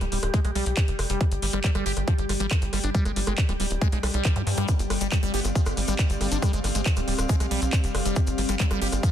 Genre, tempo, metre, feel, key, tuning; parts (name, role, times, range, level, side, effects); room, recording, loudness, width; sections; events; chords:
psychedelic trance; 138 BPM; 4/4; straight; A4 = 443 Hz
evolving wavetable pad; sustained chords; 0.0-9.1 s; G3 to G4; -32 LUFS; left 2 dB; chorus, built-in reverb, sidechain pumping
liquid acid bass; riff; 0.0-9.1 s; F3 to G4; -32 LUFS; moving between left 4 dB and right 5 dB; phaser, auto-pan, sidechain pumping, digital delay
tight sequencer bass; bass; 0.0-9.0 s; D1 to G2; -27 LUFS; equal
drum and bass drum kit; drums; 0.0-9.1 s; handclaps, hi-hat, rim click; -31 LUFS; equal
airy breathy pad; texture; 0.0-9.1 s; G4 to G5; -38 LUFS; right 3 dB; chorus, sidechain pumping
electronic kick drum; drums; 0.3-9.1 s; -23 LUFS; equal
zap; sound effects; 4.4-4.5 s; -40 LUFS; equal
cabasa; percussion; 4.7-9.1 s; -38 LUFS; left 4 dB
metallic wobble bass; second line; 5.3-6.4 s; G3 to B3; -41 LUFS; right 2 dB; wide subtle chorus, vintage 12-bit sampler grit, sidechain pumping, high-pass filter, digital delay
little or no reverb; dense, heavily limited modern master; -22 LUFS; side -10 dB against mid
0.0-9.1 A section
fade-in on analog synth pad 0.0-9.1
0.0 G5